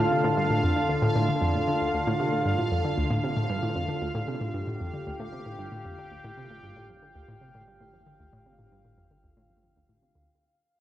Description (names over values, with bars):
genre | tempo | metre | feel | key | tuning
ambient, sequencer-driven space music | 115 BPM | 4/4 | straight | D minor | A4 = 439 Hz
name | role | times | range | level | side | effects
sweeping resonant pad | sustained chords | 0.0-10.3 s | D3 to A5 | -28 LUFS | equal | chorus
analog pluck | riff | 0.0-10.3 s | D2 to D3 | -29 LUFS | equal | chorus, tape echo
bubbling stepped-filter texture | texture | 0.0-10.3 s | F5 | -35 LUFS | equal | chorus, built-in reverb
room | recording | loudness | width
wet plate reverb, RT60 3.3 s | worn, warbling old tape, cassette tape, warbly pitch drift, faint mains hum | -24 LUFS | side -12 dB against mid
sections
0.0-10.3 A section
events
fade-out 0.0-10.3; filter sweep on synth arpeggio sound 0.0-10.3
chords
0.0 Dm